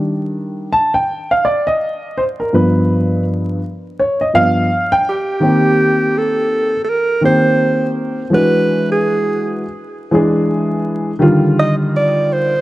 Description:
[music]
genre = hip hop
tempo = 83 BPM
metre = 4/4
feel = swing 61% on 16ths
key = unclear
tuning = A4 = 440 Hz
[part]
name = dark grand piano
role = accompaniment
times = 0.0-12.5 s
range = G2 to A5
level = -14 LUFS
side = equal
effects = none
[part]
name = mellow alto saxophone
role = melody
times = 5.1-12.6 s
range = G4 to Eb5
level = -16 LUFS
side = right 2 dB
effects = analog delay
[sound]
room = light reverb, small room ambience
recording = dark, warm production, vinyl crackle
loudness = -13 LUFS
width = side -16 dB against mid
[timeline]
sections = 0.0-5.4 A section; 5.4-12.6 B section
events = grand piano solo 0.0-5.4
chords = 0.0 Ebmaj7; 2.5 G7; 5.4 Cm7; 8.3 E9; 11.2 Ebmaj9

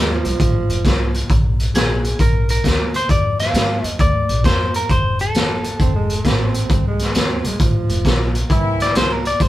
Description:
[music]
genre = electric blues shuffle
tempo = 133 BPM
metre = 4/4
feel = swing 66% on 8ths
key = unclear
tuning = A4 = 438 Hz
[part]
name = growling tenor saxophone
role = second line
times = 0.0-1.4, 5.8-8.5 s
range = F3 to C4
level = -25 LUFS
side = right 5 dB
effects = none
[part]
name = upright bass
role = bass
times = 0.0-9.5 s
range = F1 to Ab2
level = -21 LUFS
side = equal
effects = none
[part]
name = raw garage drum kit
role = drums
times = 0.2-9.5 s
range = hi-hat, kick drum, snare drum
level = -17 LUFS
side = equal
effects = none
[part]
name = electric guitar at the edge of break-up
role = melody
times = 1.8-9.5 s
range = Ab4 to F5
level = -21 LUFS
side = left 1 dB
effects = none
[part]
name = dark horn section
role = stabs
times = 8.5-9.1 s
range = E3 to E4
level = -22 LUFS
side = right 1 dB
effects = none
[sound]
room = light reverb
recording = band playing live in one room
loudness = -15 LUFS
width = side -15 dB against mid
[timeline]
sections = 0.0-9.5 A section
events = none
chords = 0.0 F7; 1.3 Bb; 4.9 F; 8.5 C7

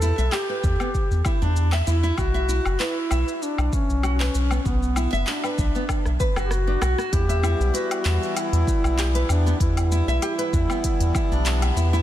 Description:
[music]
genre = organic downtempo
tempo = 97 BPM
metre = 4/4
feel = swing 54% on 16ths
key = E dorian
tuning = A4 = 444 Hz
[part]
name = mellow duduk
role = melody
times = 0.0-11.7 s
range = B3 to A4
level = -28 LUFS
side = equal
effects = vintage 12-bit sampler grit, tape echo
[part]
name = nylon-string guitar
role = arpeggios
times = 0.0-12.0 s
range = B3 to E5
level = -29 LUFS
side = equal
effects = tape echo
[part]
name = round analog bass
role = bass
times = 0.0-12.0 s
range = F#1 to E2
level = -21 LUFS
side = equal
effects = none
[part]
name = deep house drum kit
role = drums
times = 0.0-12.0 s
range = handclaps, hi-hat, rim click, shaker, woodblock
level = -30 LUFS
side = left 2 dB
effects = studio reverb
[part]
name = electronic kick drum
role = drums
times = 0.6-11.3 s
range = none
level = -24 LUFS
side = equal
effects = studio reverb
[part]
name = hand-pumped harmonium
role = accompaniment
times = 7.1-12.0 s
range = E3 to E4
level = -30 LUFS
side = left 3 dB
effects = sidechain pumping, tape echo
[sound]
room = light reverb, small room ambience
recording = dense, heavily limited modern master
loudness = -20 LUFS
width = side -12 dB against mid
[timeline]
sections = 0.0-7.1 A section; 7.1-12.0 B section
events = drum fill 5.9-7.1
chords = 0.0 Em; 2.2 Bm; 7.1 Em

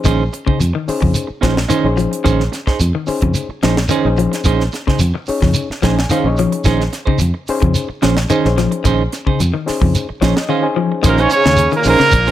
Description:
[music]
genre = afrobeat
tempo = 109 BPM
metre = 4/4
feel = straight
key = Bb minor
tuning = A4 = 440 Hz
[part]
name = overdriven reed electric piano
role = accompaniment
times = 0.0-12.2 s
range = Db4 to Ab5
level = -21 LUFS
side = left 4 dB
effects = none
[part]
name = shekere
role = percussion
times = 0.0-12.3 s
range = none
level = -22 LUFS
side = right 1 dB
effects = none
[part]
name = electric guitar at the edge of break-up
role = arpeggios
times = 0.1-12.2 s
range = Db3 to F3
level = -20 LUFS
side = left 6 dB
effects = harmonic tremolo
[part]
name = clean electric guitar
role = stabs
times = 0.1-12.3 s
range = Db4 to C5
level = -19 LUFS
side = right 7 dB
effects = none
[part]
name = fingered electric bass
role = bass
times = 0.1-12.3 s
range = Bb1 to F2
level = -17 LUFS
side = equal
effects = none
[part]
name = tight funk drum kit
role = drums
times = 0.1-12.3 s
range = hi-hat, kick drum, snare drum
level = -19 LUFS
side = equal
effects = none
[part]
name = bright trumpet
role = melody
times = 11.1-12.3 s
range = Bb4 to Db5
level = -13 LUFS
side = right 3 dB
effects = none
[part]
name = breathy tenor saxophone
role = second line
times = 11.1-12.3 s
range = Bb3 to Db4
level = -21 LUFS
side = right 4 dB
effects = none
[part]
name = warm trombone section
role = second line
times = 11.1-12.3 s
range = Bb2 to Db3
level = -22 LUFS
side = left 3 dB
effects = none
[sound]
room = light reverb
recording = none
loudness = -13 LUFS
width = side -12 dB against mid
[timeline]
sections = 0.0-11.0 A section; 11.0-12.3 B section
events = reed electric piano fill 5.6-6.7, 9.9-11.0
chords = 0.0 Bbm11

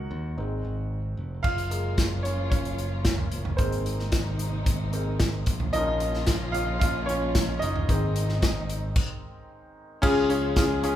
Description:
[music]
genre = piano-driven pop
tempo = 112 BPM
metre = 4/4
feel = straight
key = unclear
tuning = A4 = 440 Hz
[part]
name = clear upright piano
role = accompaniment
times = 0.0-11.0 s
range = Db3 to Gb5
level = -29 LUFS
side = left 1 dB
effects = none
[part]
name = modern bright picked electric bass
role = bass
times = 0.0-11.0 s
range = F1 to Eb2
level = -30 LUFS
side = equal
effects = none
[part]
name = warm studio string section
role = sustained chords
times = 1.4-11.0 s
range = Ab2 to Ab4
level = -36 LUFS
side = left 1 dB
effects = none
[part]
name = natural country drum kit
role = drums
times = 1.4-11.0 s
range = crash cymbal, hi-hat, kick drum, snare drum, toms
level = -26 LUFS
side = equal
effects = none
[sound]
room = moderate large studio reverb, RT60 1.4 s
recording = band playing live in one room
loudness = -24 LUFS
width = side -11 dB against mid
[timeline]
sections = 0.0-1.4 A section; 1.4-10.0 B section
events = upright piano solo 0.0-1.4, 1.4-10.0; stop 9.0-10.0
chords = 0.4 Ab; 1.4 Gbmaj7; 3.6 Abadd9; 5.5 Bbm; 7.9 Ab; 10.0 Db

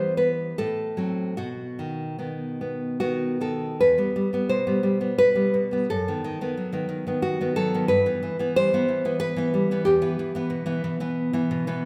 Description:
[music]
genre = romantic piece for solo classical guitar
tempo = 73-94 BPM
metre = 3/4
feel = rubato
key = E minor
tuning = A4 = 440 Hz
[part]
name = nylon-string guitar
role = solo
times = 0.0-11.8 s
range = E2 to C5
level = -25 LUFS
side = equal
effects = none
[sound]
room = moderate scoring stage reverb, RT60 1.4 s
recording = recorded in a church or concert hall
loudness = -25 LUFS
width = mono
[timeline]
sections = 0.0-3.8 A section; 3.8-11.9 B section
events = none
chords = 0.0 Em; 0.6 F#dim/A; 1.4 B; 3.8 Em (rootless); 5.9 B7/F#; 7.9 Em/G; 9.8 Em

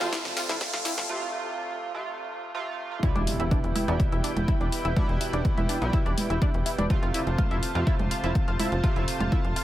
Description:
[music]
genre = melodic techno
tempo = 124 BPM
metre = 4/4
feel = straight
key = E phrygian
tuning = A4 = 440 Hz
[part]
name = lush unison pad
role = sustained chords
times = 0.0-9.6 s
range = E4 to A5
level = -35 LUFS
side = left 1 dB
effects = chorus, sidechain pumping
[part]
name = tight sequenced synth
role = arpeggios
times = 0.0-9.6 s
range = D4 to F5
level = -34 LUFS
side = equal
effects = chorus, sidechain pumping, digital delay
[part]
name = sync-sweep polysynth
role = stabs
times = 0.0-9.6 s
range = B2 to F4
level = -32 LUFS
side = right 3 dB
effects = chorus, sidechain pumping, digital delay
[part]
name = tight sequencer bass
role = bass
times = 0.0-9.5 s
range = E1 to F2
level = -29 LUFS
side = equal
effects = tube saturation, sidechain pumping
[part]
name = house drum kit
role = drums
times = 0.0-9.6 s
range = congas, hi-hat, snare drum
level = -33 LUFS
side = right 1 dB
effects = high-pass filter on snare, high-pass filter on hats, high-pass filter on perc
[part]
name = tambourine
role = percussion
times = 0.0-1.1 s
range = none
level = -40 LUFS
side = left 4 dB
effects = none
[part]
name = riser and impact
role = sound effects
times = 0.0-5.0 s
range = none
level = -35 LUFS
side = equal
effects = none
[part]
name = ethereal airy pad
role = texture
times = 0.0-1.1 s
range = A4 to G5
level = -44 LUFS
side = left 1 dB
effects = none
[part]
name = electronic kick drum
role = drums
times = 0.1-9.4 s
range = none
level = -26 LUFS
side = equal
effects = overdrive, high-pass filter on kick, high-pass filter on room
[sound]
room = light reverb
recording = high-pass filter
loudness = -24 LUFS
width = side -14 dB against mid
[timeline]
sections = 0.0-3.0 A section; 3.0-9.6 B section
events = build-up 0.0-3.0; drum fill 0.0-1.1; riser 0.0-1.1; filter sweep on analog polysynth 0.0-3.0; filter sweep 0.0-3.0; break 1.1-3.0; drop 3.0-9.6; impact 3.0-5.0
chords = 0.0 F; 3.0 Em; 6.9 F

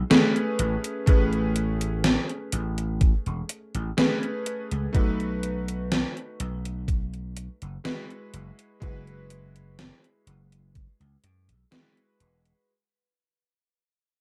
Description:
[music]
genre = vaporwave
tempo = 62 BPM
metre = 4/4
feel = straight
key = unclear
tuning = A4 = 440 Hz
[part]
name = bright electric grand piano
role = accompaniment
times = 0.0-12.7 s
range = G#3 to B4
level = -32 LUFS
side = equal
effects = subtle chorus, analog delay, plate reverb
[part]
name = vintage slap bass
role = bass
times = 0.0-12.5 s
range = E1 to F#2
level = -32 LUFS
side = equal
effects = none
[part]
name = gated 80s digital drum machine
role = drums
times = 0.1-12.6 s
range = hi-hat, snare drum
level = -26 LUFS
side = equal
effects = gated reverb, gated reverb snare, overdrive
[part]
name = electronic kick drum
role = drums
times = 1.1-11.0 s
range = none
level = -23 LUFS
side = equal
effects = none
[sound]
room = moderate small room reverb, RT60 0.5 s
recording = rough home demo mix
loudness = -26 LUFS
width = mono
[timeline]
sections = 0.0-12.7 A section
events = fade-out 0.0-12.7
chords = 0.0 Emaj7; 0.6 Amaj9; 4.9 B7; 8.3 F#9sus4

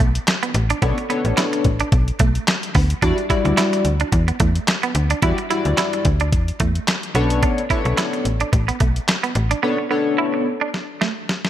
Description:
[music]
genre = early-eighties boogie funk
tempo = 109 BPM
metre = 4/4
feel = swing 56% on 16ths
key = unclear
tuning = A4 = 440 Hz
[part]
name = clean electric guitar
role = riff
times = 0.0-11.1 s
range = A3 to E4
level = -24 LUFS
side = right 6 dB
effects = wide subtle chorus
[part]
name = slap-like FM bass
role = bass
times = 0.0-9.5 s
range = A1 to E2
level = -19 LUFS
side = equal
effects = none
[part]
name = detuned 8-bit digital drum machine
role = drums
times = 0.0-11.5 s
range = handclaps, hi-hat, kick drum, snare drum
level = -20 LUFS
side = equal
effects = none
[part]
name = chorused polysynth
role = accompaniment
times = 0.8-10.5 s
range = G3 to D5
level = -22 LUFS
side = left 2 dB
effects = none
[sound]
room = light reverb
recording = none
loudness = -17 LUFS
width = side -12 dB against mid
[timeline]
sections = 0.0-11.5 A section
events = drum fill 10.7-11.5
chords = 0.0 Bm9; 3.0 Em9; 7.2 Bm9

